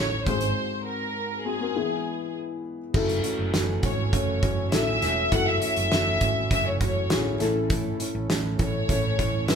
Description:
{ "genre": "piano-driven pop", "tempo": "101 BPM", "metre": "4/4", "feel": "straight", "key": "F# minor", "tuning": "A4 = 441 Hz", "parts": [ { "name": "warm studio violin section", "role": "melody", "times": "0.0-9.6 s", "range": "G#4 to F#5", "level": "-27 LUFS", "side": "left 2 dB", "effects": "none" }, { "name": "felt-muted upright piano", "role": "accompaniment", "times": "0.0-9.6 s", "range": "G#2 to B4", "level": "-31 LUFS", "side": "left 6 dB", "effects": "none" }, { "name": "sweeping resonant pad", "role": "sustained chords", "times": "0.0-9.6 s", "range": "F#3 to G#5", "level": "-39 LUFS", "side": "right 1 dB", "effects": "chorus" }, { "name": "hollow-body short-scale picked electric bass", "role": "bass", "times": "0.0-9.6 s", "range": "E1 to A1", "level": "-29 LUFS", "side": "right 1 dB", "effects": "none" }, { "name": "loose indie drum kit", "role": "drums", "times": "0.3-9.6 s", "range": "crash cymbal, hi-hat, kick drum, snare drum", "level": "-27 LUFS", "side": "right 1 dB", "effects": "none" }, { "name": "fingerpicked plugged-in steel-string acoustic guitar", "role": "riff", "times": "2.9-9.6 s", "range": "F#2 to A4", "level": "-32 LUFS", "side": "right 6 dB", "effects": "none" } ], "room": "moderate large studio reverb, RT60 1.3 s", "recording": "band playing live in one room", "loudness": "-23 LUFS", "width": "side -7 dB against mid", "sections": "0.0-2.9 A section; 2.9-9.6 B section", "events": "break 0.6-2.9", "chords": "0.3 G#7; 1.8 E; 2.9 F#m7; 7.4 A", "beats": "| 0.56 1.16 1.75 2.35 | 2.94 3.54 4.13 4.73 | 5.32 5.92 6.51 7.11 | 7.70 8.30 8.89 9.49" }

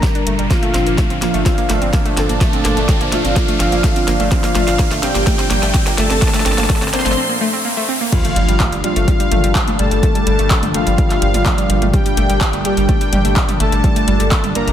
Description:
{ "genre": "melodic techno", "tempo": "126 BPM", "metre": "4/4", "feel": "straight", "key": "G minor", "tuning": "A4 = 440 Hz", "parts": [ { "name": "analog synth brass", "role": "melody", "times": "0.0-14.7 s", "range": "F3 to C5", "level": "-22 LUFS", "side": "left 1 dB", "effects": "chorus, sidechain pumping, ping-pong delay" }, { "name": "soft supersaw", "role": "second line", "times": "0.0-14.7 s", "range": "F5 to C6", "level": "-24 LUFS", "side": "equal", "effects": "sidechain pumping, low-pass filter, analog delay" }, { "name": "sweeping resonant pad", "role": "sustained chords", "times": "0.0-14.7 s", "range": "Bb2 to D4", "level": "-23 LUFS", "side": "right 1 dB", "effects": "chorus, sidechain pumping" }, { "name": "analog pluck", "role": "arpeggios", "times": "0.0-14.7 s", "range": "G3 to D4", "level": "-23 LUFS", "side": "equal", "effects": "chorus, cassette tape, sidechain pumping, analog delay" }, { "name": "deep house drum kit", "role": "drums", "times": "0.0-14.7 s", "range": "crash cymbal, handclaps, hi-hat, snare drum, toms", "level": "-22 LUFS", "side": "equal", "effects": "overdrive, high-pass filter on snare, high-pass filter on hats, high-pass filter on toms, high-pass filter on cymbals" }, { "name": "electronic kick drum", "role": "drums", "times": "0.0-14.4 s", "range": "none", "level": "-17 LUFS", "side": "equal", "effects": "overdrive" }, { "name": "riser and impact", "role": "sound effects", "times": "0.0-10.0 s", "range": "none", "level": "-24 LUFS", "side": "equal", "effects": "none" }, { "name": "round analog bass", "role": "bass", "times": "0.3-14.7 s", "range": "G1", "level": "-19 LUFS", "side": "equal", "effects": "sidechain pumping" }, { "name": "bowed-like drone", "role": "drone", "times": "9.8-14.7 s", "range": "G2 to D3", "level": "-30 LUFS", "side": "left 1 dB", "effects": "none" } ], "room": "light reverb, digital ambience", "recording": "none", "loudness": "-13 LUFS", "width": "side -10 dB against mid", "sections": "0.0-8.1 A section; 8.1-14.7 B section", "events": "build-up 0.0-8.1; drum fill 0.0-7.2; riser 0.0-8.1; filter sweep on analog polysynth 0.0-8.1; filter sweep on supersaw synth 0.0-8.1; filter sweep on analog synth pad 0.0-8.1; break 7.2-8.1; drop 8.1-14.7; impact 8.1-10.0", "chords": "0.0 Gm; 0.5 Bb/G; 8.1 Gm", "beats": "0.03 | 0.51 0.98 1.46 1.93 | 2.41 2.89 3.36 3.84 | 4.32 4.79 5.27 5.74 | 6.22 6.70 7.17 7.65 | 8.12 8.60 9.08 9.55 | 10.03 10.51 10.98 11.46 | 11.93 12.41 12.89 13.36 | 13.84 14.31" }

